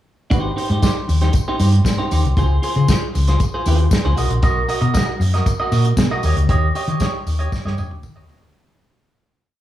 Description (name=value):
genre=disco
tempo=117 BPM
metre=4/4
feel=straight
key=Ab major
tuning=A4 = 440 Hz
part: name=clean electric guitar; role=accompaniment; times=0.3-8.5 s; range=Eb4 to D#5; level=-22 LUFS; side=right 2 dB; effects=spring reverb
part: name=hollow-body short-scale fingered electric bass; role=bass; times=0.3-8.5 s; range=Ab1 to Eb3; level=-17 LUFS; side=left 1 dB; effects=none
part: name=warm soul drum kit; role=drums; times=0.3-8.5 s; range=hi-hat, kick drum, snare drum, toms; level=-20 LUFS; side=equal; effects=none
part: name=tambourine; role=percussion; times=0.3-8.4 s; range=none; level=-36 LUFS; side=left 7 dB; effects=none
room=studio reverb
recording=small room ambience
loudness=-15 LUFS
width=side -13 dB against mid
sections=0.3-8.5 verse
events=fade-out 6.5-8.5; drum fill 7.5-8.5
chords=0.3 Abmaj7; 2.4 Dbmaj7; 4.2 Bmaj7; 6.2 Eb7